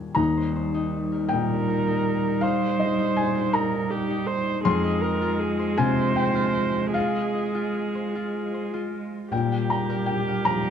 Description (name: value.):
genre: neoclassical piano and strings.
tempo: 53 BPM (dotted quarters).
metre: 6/8.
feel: rubato.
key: Eb major.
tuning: A4 = 442 Hz.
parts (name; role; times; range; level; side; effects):
felt-muted upright piano; accompaniment; 0.0-10.7 s; Eb2 to C6; -25 LUFS; left 4 dB; none.
muted cello; second line; 0.2-10.7 s; G3 to Ab3; -28 LUFS; right 6 dB; none.
concert harp; arpeggios; 0.2-10.7 s; Eb4 to G5; -31 LUFS; left 8 dB; tape echo.
muted viola; accompaniment; 1.3-10.7 s; G4 to C5; -28 LUFS; right 4 dB; none.
room: light reverb.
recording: dark, warm production.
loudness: -22 LUFS.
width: side -8 dB against mid.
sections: 0.2-10.7 A section.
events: none.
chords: 0.2 Eb6; 4.7 Fm7; 9.3 Bb5.